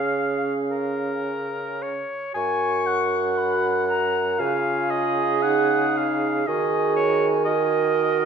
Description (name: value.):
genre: classical, slow romantic movement for wind quintet.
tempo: 54-62 BPM.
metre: 4/4.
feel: rubato.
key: F# major.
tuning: A4 = 440 Hz.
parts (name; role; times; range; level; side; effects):
silver concert flute; melody; 0.0-8.3 s; E#5 to C#6; -29 LUFS; left 9 dB; none.
warm oboe; second line; 0.0-8.3 s; A#4 to G#5; -26 LUFS; left 1 dB; none.
clear French horn; accompaniment; 0.0-8.3 s; C#4 to G#4; -28 LUFS; right 2 dB; none.
warm clarinet; accompaniment; 0.0-8.3 s; F#4 to A#4; -26 LUFS; right 9 dB; none.
mellow bassoon; bass; 0.0-8.3 s; F#2 to D#3; -25 LUFS; right 3 dB; none.
room: wet recital hall reverb, RT60 1.4 s.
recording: dark, warm production.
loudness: -20 LUFS.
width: side -7 dB against mid.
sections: 0.0-2.4 A section; 2.4-8.3 B section.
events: none.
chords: 0.0 C#; 2.4 F#; 4.4 C#add9; 6.5 D#m.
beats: 0.16 1.28 | 2.36 3.38 4.40 5.44 | 6.47 7.45.